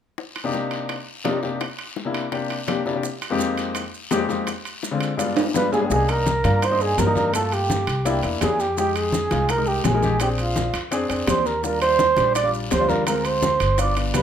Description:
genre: Afro-Cuban jazz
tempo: 168 BPM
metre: 4/4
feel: straight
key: C minor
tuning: A4 = 440 Hz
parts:
  - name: bongos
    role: percussion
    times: 0.2-14.2 s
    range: none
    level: -30 LUFS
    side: left 8 dB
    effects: none
  - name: guiro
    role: percussion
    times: 0.2-14.2 s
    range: none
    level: -36 LUFS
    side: left 4 dB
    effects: none
  - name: warm baby grand piano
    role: accompaniment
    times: 0.4-14.2 s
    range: F2 to F5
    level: -25 LUFS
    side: left 4 dB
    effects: none
  - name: timbales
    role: percussion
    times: 0.4-14.2 s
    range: none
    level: -29 LUFS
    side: right 2 dB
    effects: none
  - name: maracas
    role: percussion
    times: 3.0-14.2 s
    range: none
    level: -35 LUFS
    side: right 8 dB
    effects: none
  - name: breathy mellow concert flute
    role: second line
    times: 5.5-14.2 s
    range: F5 to D6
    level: -29 LUFS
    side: right 4 dB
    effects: none
  - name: breathy trumpet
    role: melody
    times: 5.6-14.2 s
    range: F4 to D5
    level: -22 LUFS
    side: right 3 dB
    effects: none
  - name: upright bass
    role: bass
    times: 5.9-14.2 s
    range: G1 to G2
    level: -25 LUFS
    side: equal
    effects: none
  - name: congas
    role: percussion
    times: 5.9-14.2 s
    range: none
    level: -29 LUFS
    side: left 1 dB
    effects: none
room: light reverb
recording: minimal, uncompressed stereo recording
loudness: -19 LUFS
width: side -9 dB against mid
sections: 0.2-5.9 A section; 5.9-14.2 B section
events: drum fill 5.4-5.9; grand piano fill 5.4-5.9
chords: 0.2 Cm9; 1.6 C7; 3.0 Fm11; 4.5 Dm7b5; 5.2 G7b9; 5.9 Cm7; 7.3 Gm7; 8.1 C7; 8.8 Fm9; 10.2 Bb7; 11.6 Ebmaj7; 13.1 Dm7b5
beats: | 0.18 0.54 0.90 1.25 | 1.61 1.97 2.33 2.69 | 3.04 3.40 3.76 4.12 | 4.47 4.83 5.19 5.55 | 5.91 6.26 6.62 6.98 | 7.34 7.70 8.05 8.41 | 8.77 9.13 9.49 9.85 | 10.20 10.56 10.92 11.28 | 11.64 11.99 12.35 12.71 | 13.07 13.43 13.79 14.14

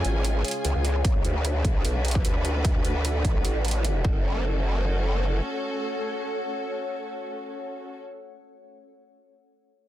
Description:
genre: heavy wobble dubstep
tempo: 150 BPM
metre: 4/4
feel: swing 53% on 16ths, half-time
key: F# harmonic minor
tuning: A4 = 439 Hz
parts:
  - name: muted studio string section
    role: sustained chords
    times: 0.0-8.0 s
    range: C#3 to G#5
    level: -34 LUFS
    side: equal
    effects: sidechain pumping
  - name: growl bass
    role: bass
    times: 0.0-5.4 s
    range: F#1 to D2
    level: -25 LUFS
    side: equal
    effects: chorus, overdrive
  - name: electronic hi-hat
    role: drums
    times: 0.0-3.9 s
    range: none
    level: -32 LUFS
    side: right 3 dB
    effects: none
  - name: granular cloud pad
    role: texture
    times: 0.0-8.2 s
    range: G#4 to F#5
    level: -33 LUFS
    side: left 1 dB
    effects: built-in reverb, sidechain pumping
  - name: electronic kick drum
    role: drums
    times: 1.0-4.1 s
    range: none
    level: -24 LUFS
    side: equal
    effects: none
room: little or no reverb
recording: dense, heavily limited modern master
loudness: -24 LUFS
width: side -13 dB against mid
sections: 0.0-4.2 A section; 4.2-7.4 B section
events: none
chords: 0.0 C#; 1.0 Bm; 4.0 F#m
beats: 0.25 0.65 | 1.05 1.45 1.85 2.25 | 2.65 3.05 3.45 3.85 | 4.25 4.65 5.05 5.45 | 5.85 6.25 6.65 7.05

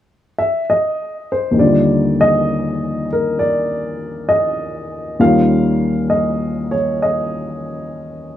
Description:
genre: jazz ballad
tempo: 66 BPM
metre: 4/4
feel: swing 68% on 8ths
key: Eb major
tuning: A4 = 440 Hz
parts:
  - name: dark upright piano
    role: solo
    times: 0.4-8.4 s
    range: Eb2 to F5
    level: -15 LUFS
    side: left 1 dB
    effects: none
room: light reverb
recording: small room ambience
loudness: -14 LUFS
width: side -11 dB against mid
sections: 0.0-1.6 A section; 1.6-8.4 B section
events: none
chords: 0.0 N.C.; 1.6 Ebmaj7; 5.2 Eb7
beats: 0.65 | 1.56 2.47 3.38 4.29 | 5.20 6.10 7.00 7.91

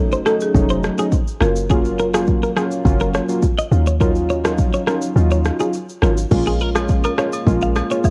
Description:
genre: afrobeats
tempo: 104 BPM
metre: 4/4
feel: straight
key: Bb minor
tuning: A4 = 440 Hz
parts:
  - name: warm analog keys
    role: accompaniment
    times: 0.0-8.1 s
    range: Gb3 to F4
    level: -23 LUFS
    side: equal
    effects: chorus, cassette tape
  - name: deep log drum bass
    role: bass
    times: 0.0-7.8 s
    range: F1 to Eb2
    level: -21 LUFS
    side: equal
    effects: none
  - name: clean electric guitar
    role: riff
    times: 0.1-8.0 s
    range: Ab4 to F5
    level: -25 LUFS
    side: equal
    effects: cassette tape, analog delay
  - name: afro-pop drum kit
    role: drums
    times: 0.1-8.1 s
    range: crash cymbal, kick drum, rim click, shaker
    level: -22 LUFS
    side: equal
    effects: none
  - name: folk marimba with medium hard mallets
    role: melody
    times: 0.3-1.5 s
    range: Ab4 to Bb4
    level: -26 LUFS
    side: equal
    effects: cassette tape
  - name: agogo bells and woodblock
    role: percussion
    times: 6.8-8.1 s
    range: none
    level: -31 LUFS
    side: equal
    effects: none
room: little or no reverb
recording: home recording on cassette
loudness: -18 LUFS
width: mono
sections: 0.0-6.3 A section; 6.3-8.1 B section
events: kick muted 5.2-6.3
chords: 0.0 F7b9b13; 1.4 Gbmaj7; 3.7 Ebm9; 6.3 Bbm7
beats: 0.54 1.12 | 1.70 2.27 2.85 3.43 | 4.01 4.58 5.16 5.74 | 6.31 6.89 7.47 8.04

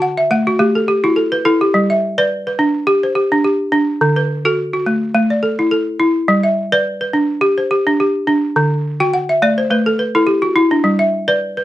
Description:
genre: west african traditional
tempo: 106 BPM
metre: 4/4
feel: swing 56% on 16ths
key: G major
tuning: A4 = 440 Hz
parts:
  - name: balafon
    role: solo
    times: 0.0-11.6 s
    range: D3 to A5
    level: -13 LUFS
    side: equal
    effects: none
room: light reverb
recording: dark, warm production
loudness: -13 LUFS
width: side -14 dB against mid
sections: 0.0-11.6 A section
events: balafon fill 0.0-1.7, 9.0-10.8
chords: 0.0 D (rootless); 0.6 A5; 1.7 G; 4.0 D; 5.2 A5; 6.3 G; 8.6 D; 9.7 A5; 10.8 G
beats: 0.02 0.59 1.16 | 1.73 2.30 2.87 3.44 | 4.01 4.58 5.15 5.72 | 6.29 6.86 7.42 7.99 | 8.56 9.13 9.70 10.27 | 10.84 11.40

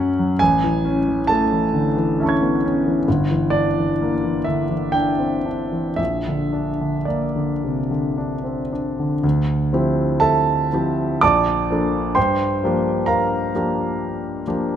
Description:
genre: classical, impressionist solo piano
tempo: 54-69 BPM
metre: 3/4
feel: rubato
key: unclear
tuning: A4 = 440 Hz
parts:
  - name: clear concert grand piano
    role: solo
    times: 0.0-14.8 s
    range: G1 to G#6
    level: -18 LUFS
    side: equal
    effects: none
room: moderate concert hall reverb, RT60 1.9 s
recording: close, detailed microphones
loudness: -18 LUFS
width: side -9 dB against mid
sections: 0.0-9.2 A section; 9.2-14.8 B section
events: none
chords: 0.4 Amaj7; 3.1 Gm6; 6.0 Bb; 9.2 Dm11; 11.2 Bbmaj7; 12.2 Gm7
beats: | 0.40 1.29 2.17 | 3.07 3.98 4.95 | 5.99 7.08 8.17 | 9.23 10.20 11.21 | 12.16 13.07 14.00

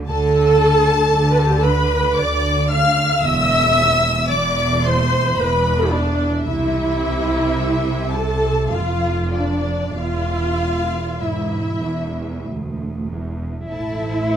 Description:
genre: classical, slow romantic movement for string orchestra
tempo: 47-58 BPM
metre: 3/4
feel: rubato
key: unclear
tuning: A4 = 438 Hz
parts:
  - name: warm studio violin section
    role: melody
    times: 0.1-14.4 s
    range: D5 to F6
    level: -26 LUFS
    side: left 6 dB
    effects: none
  - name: warm studio violin section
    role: second line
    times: 0.1-14.4 s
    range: C5 to F6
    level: -26 LUFS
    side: left 5 dB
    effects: none
  - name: dark studio viola section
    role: accompaniment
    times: 0.1-14.4 s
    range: A3 to F5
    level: -19 LUFS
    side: right 1 dB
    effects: none
  - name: warm studio cello section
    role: bass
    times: 0.1-14.4 s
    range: D2 to E4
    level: -23 LUFS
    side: right 2 dB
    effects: none
  - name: warm studio double bass section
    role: bass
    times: 0.1-14.4 s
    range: E1 to D2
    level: -23 LUFS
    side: right 2 dB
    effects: none
room: light reverb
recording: close, detailed microphones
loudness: -16 LUFS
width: side -8 dB against mid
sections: 0.0-13.7 A section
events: none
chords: 0.0 Dm; 3.2 Cmaj9/E; 6.4 C6; 8.7 Dm/F; 10.0 E; 13.7 Am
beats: | 0.07 1.12 2.17 | 3.23 4.30 5.39 | 6.43 7.56 8.74 | 9.98 11.23 12.48 | 13.70

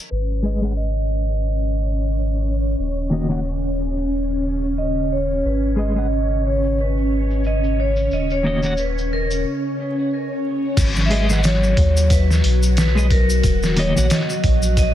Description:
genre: trip hop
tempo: 90 BPM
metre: 4/4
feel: swing 58% on 16ths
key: G# minor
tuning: A4 = 440 Hz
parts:
  - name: vibraphone with medium hard mallets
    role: melody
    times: 0.1-14.9 s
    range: A#4 to E5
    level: -25 LUFS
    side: equal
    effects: vintage 12-bit sampler grit, dub echo
  - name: string machine, cellos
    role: sustained chords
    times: 0.1-14.9 s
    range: F#3 to C#5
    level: -24 LUFS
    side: equal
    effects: ensemble chorus
  - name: soft dub sub bass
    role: bass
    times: 0.1-14.9 s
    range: D#1 to D#2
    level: -20 LUFS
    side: equal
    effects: tube saturation
  - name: tube shaker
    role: percussion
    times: 0.1-14.9 s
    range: none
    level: -32 LUFS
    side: left 2 dB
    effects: none
  - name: clean electric guitar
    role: accompaniment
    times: 0.4-14.1 s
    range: D#3 to F#5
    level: -25 LUFS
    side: left 1 dB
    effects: tremolo, vintage 12-bit sampler grit, tape echo
  - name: trip hop sampler-style drum kit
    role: drums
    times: 10.8-14.9 s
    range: crash cymbal, hi-hat, kick drum, snare drum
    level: -19 LUFS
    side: equal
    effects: none
room: digital ambience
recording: dense, heavily limited modern master, vinyl crackle, low-pass filter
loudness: -17 LUFS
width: side -12 dB against mid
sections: 0.1-10.8 A section; 10.8-14.9 B section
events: filter sweep 0.1-10.8; break 9.4-10.8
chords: 0.1 G#m; 2.8 N.C.; 5.4 G#m; 8.1 N.C.; 10.8 G#m; 13.4 D#m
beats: | 0.11 0.78 1.44 2.11 | 2.78 3.44 4.11 4.78 | 5.44 6.11 6.78 7.44 | 8.11 8.78 9.44 10.11 | 10.78 11.44 12.11 12.78 | 13.44 14.11 14.78

